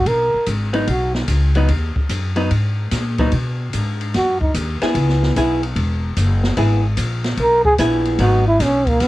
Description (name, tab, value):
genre	jazz, small-group swing and bop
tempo	148 BPM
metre	4/4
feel	swing 67% on 8ths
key	G# minor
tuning	A4 = 440 Hz
part	breathy trombone	second line	0.0-1.2, 4.2-4.5, 7.4-9.1 s	A#3 to A#4	-16 LUFS	right 1 dB	cassette tape
part	upright bass	bass	0.0-9.1 s	E1 to B2	-18 LUFS	equal	none
part	open jazz drum kit	drums	0.1-9.1 s	hi-hat, kick drum, ride cymbal, snare drum	-24 LUFS	left 1 dB	cassette tape
part	vintage hollow-body jazz guitar	accompaniment	0.7-8.4 s	F#3 to G#4	-19 LUFS	equal	cassette tape
room	little or no reverb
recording	home recording on cassette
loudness	-15 LUFS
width	side -17 dB against mid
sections	0.0-9.1 A section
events	trombone solo 0.0-9.1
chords	0.0 G#m7; 4.9 C#m7; 8.2 G#m7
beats	| 0.07 0.47 0.88 1.29 | 1.69 2.10 2.51 2.91 | 3.32 3.73 4.13 4.54 | 4.95 5.35 5.76 6.17 | 6.57 6.98 7.38 7.79 | 8.20 8.60 9.01